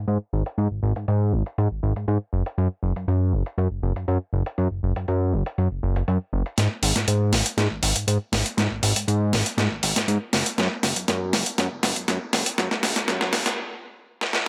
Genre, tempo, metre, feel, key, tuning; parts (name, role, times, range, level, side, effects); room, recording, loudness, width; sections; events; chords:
filtered disco house; 120 BPM; 4/4; straight; A4 = 440 Hz
fat analog bass; bass; 0.0-13.4 s; F#1 to G#2; -25 LUFS; equal; low-pass filter
dusty soul sampler-style drum kit; drums; 0.1-14.4 s; hi-hat, snare drum; -26 LUFS; equal; overdrive, low-pass filter on hats, low-pass filter on snare
light reverb; high-pass filter; -24 LUFS; mono
0.0-6.6 A section; 6.6-14.5 B section
build-up 6.6-14.5; drum fill 6.6-13.6, 14.2; filter sweep on analog synth bass 6.6-14.5; stop 13.6-14.5